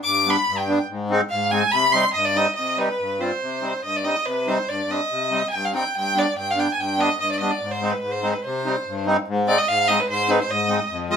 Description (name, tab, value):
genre	klezmer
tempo	143 BPM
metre	2/4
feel	straight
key	C harmonic minor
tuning	A4 = 440 Hz
part	warm violin	melody	0.0-11.2 s	B4 to D6	-21 LUFS	right 1 dB	none
part	accordion	accompaniment	0.0-11.2 s	F2 to F4	-23 LUFS	left 1 dB	none
room	moderate studio reverb, RT60 0.5 s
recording	minimal, uncompressed stereo recording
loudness	-19 LUFS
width	side -7 dB against mid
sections	0.0-2.6 A section; 2.6-9.3 B section; 9.3-11.2 C section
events	speeding up 0.0-11.2; violin solo 0.0-2.6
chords	0.0 G; 0.9 Ab; 1.7 Cm; 6.0 G; 7.6 Ab; 8.4 Cm; 9.3 Ab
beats	| 0.06 0.48 | 0.90 1.32 | 1.74 2.16 | 2.58 3.01 | 3.43 3.85 | 4.27 4.70 | 5.12 5.54 | 5.96 6.37 | 6.79 7.21 | 7.62 8.04 | 8.45 8.86 | 9.27 9.68 | 10.09 10.50 | 10.90